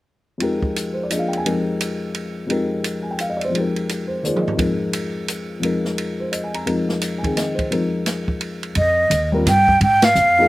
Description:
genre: modal jazz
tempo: 172 BPM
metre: 3/4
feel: swing 63% on 8ths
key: F minor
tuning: A4 = 439 Hz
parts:
  - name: dark baby grand piano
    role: accompaniment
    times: 0.4-10.5 s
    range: F2 to Bb5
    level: -21 LUFS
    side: left 2 dB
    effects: none
  - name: open jazz drum kit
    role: drums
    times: 0.4-10.3 s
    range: hi-hat, kick drum, ride cymbal, snare drum, toms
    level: -25 LUFS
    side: right 1 dB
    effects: none
  - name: breathy mellow silver concert flute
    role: melody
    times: 8.8-10.5 s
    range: Eb5 to G5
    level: -14 LUFS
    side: right 1 dB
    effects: none
  - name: upright bass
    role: bass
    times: 8.8-10.5 s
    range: Eb2 to Ab2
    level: -20 LUFS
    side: equal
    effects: none
room: little or no reverb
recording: recorded outdoors, with no room sound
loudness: -18 LUFS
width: side -18 dB against mid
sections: 0.4-8.8 A section; 8.8-10.5 B section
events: drum fill 4.2-4.6; band accent 10.0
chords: 0.4 Fm11; 4.6 Absus2/F; 8.8 Fm9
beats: | 0.41 0.75 1.10 | 1.45 1.80 2.15 | 2.49 2.84 3.19 | 3.54 3.89 4.24 | 4.58 4.93 5.28 | 5.63 5.98 6.33 | 6.67 7.02 7.37 | 7.72 8.07 8.41 | 8.76 9.11 9.46 | 9.81 10.15

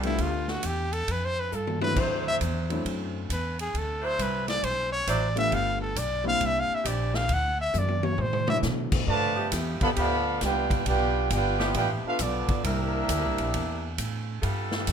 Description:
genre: jazz, big band swing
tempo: 135 BPM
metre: 4/4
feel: swing 65% on 8ths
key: G major from 9.1 s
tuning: A4 = 440 Hz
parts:
  - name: clear trumpet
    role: melody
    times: 0.0-8.6 s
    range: E4 to F#5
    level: -28 LUFS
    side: left 1 dB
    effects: none
  - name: warm baby grand piano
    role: accompaniment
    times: 0.0-9.0 s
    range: F#3 to C5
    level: -32 LUFS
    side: left 2 dB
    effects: none
  - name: warm saxophone section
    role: sustained chords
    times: 0.0-14.9 s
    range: E3 to C5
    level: -34 LUFS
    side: equal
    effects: none
  - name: upright bass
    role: bass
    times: 0.0-14.9 s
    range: G1 to B2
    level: -30 LUFS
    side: equal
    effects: none
  - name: swinging big-band drum kit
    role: drums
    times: 0.0-14.9 s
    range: crash cymbal, hi-hat, kick drum, ride cymbal, snare drum, toms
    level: -32 LUFS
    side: equal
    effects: none
  - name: mellow trumpet section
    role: melody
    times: 9.1-14.0 s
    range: B3 to B5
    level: -28 LUFS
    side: right 2 dB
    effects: none
  - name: clear trombone section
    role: second line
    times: 9.1-14.0 s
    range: D3 to G4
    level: -32 LUFS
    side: right 2 dB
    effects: none
room: light reverb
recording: minimal, uncompressed stereo recording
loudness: -24 LUFS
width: side -8 dB against mid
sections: 0.0-9.1 A section; 9.1-14.9 B section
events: trumpet solo 0.0-9.1; drum fill 1.5-2.0, 7.7-8.6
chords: 0.0 G9; 2.0 D9; 5.5 G9; 6.4 C9; 7.3 D9; 9.1 G9; 12.6 C9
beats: | 0.19 0.63 1.07 1.52 | 1.96 2.41 2.85 3.30 | 3.74 4.18 4.63 5.07 | 5.52 5.96 6.41 6.85 | 7.30 7.74 8.19 8.63 | 9.08 9.52 9.97 10.41 | 10.86 11.31 11.75 12.20 | 12.64 13.09 13.54 13.98 | 14.43 14.88

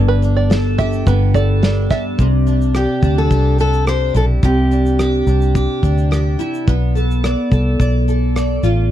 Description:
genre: acoustic pop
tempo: 107 BPM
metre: 4/4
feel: straight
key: C major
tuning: A4 = 435 Hz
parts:
  - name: picked steel-string acoustic guitar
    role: accompaniment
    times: 0.0-8.9 s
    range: G2 to D5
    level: -19 LUFS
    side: equal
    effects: double-tracked left and right
  - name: vintage muted fingered electric bass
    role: bass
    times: 0.0-8.9 s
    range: G1 to D2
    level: -15 LUFS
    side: equal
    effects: none
  - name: open-back banjo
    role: arpeggios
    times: 0.1-2.0 s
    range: B4 to E5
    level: -22 LUFS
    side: right 7 dB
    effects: none
  - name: loose indie drum kit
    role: drums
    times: 0.2-8.8 s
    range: kick drum, rim click, shaker, snare drum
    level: -18 LUFS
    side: equal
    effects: none
  - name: fingerpicked steel-string acoustic guitar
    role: melody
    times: 2.8-6.4 s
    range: G4 to C5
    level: -20 LUFS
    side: equal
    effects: none
room: small room ambience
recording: dry, close 1970s-style studio recording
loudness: -13 LUFS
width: side -12 dB against mid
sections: 0.0-2.2 A section; 2.2-8.9 B section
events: none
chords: 0.0 Gadd9; 2.2 Cadd9; 6.7 Bm7b5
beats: 0.51 1.07 1.63 | 2.19 2.75 3.31 3.87 | 4.43 4.99 5.55 6.11 | 6.67 7.23 7.79 8.36

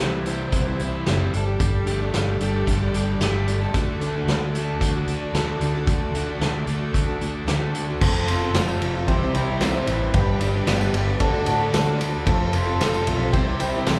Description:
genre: folk rock and heartland rock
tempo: 112 BPM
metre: 4/4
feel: straight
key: unclear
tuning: A4 = 440 Hz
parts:
  - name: picked plugged-in steel-string acoustic guitar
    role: accompaniment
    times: 0.0-14.0 s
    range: C3 to C5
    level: -30 LUFS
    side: equal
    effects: plate reverb, slapback echo
  - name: bright studio string section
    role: sustained chords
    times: 0.0-14.0 s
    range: C4 to E5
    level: -36 LUFS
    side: equal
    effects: none
  - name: overdriven semi-hollow guitar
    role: riff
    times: 0.0-14.0 s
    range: F2 to G4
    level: -31 LUFS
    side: equal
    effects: spring reverb
  - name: fingered electric bass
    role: bass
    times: 0.0-14.0 s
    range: F1 to A2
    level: -27 LUFS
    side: equal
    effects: none
  - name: vintage drum kit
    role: drums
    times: 0.3-14.0 s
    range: crash cymbal, hi-hat, kick drum, ride cymbal, snare drum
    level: -27 LUFS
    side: equal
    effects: none
  - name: reed electric piano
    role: accompaniment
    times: 8.0-14.0 s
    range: G4 to C6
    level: -32 LUFS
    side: equal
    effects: plate reverb
  - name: tambourine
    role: percussion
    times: 8.0-14.0 s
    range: none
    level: -43 LUFS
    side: equal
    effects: none
room: light reverb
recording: live gig heard through the venue's PA, club reverb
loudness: -23 LUFS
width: mono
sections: 0.0-8.0 A section; 8.0-14.0 B section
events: none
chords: 0.0 C; 1.3 Gsus2; 3.7 D; 8.0 F; 9.1 C; 10.1 G; 11.2 D; 12.3 F; 13.3 C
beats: 0.00 0.53 1.07 | 1.60 2.14 2.67 3.21 | 3.74 4.28 4.81 5.34 | 5.88 6.41 6.95 7.48 | 8.01 8.54 9.08 9.61 | 10.14 10.68 11.21 11.74 | 12.27 12.81 13.34 13.87

